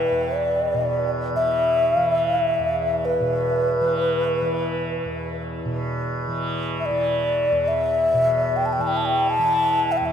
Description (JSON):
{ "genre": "world meditative, free-time meditation music", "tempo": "free time", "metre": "none", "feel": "none", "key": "unclear", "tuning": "A4 = 438 Hz", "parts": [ { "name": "breathy mellow xiao", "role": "melody", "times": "0.0-10.1 s", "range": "B4 to A5", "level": "-20 LUFS", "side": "left 1 dB", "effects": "none" }, { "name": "tanpura", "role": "drone", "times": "0.0-10.1 s", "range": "E2 to E3", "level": "-26 LUFS", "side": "equal", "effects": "stereo widening" } ], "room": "wet huge ambient reverb, RT60 7.6 s", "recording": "none", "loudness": "-20 LUFS", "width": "side -8 dB against mid", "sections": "0.0-10.1 A section", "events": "none", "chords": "none" }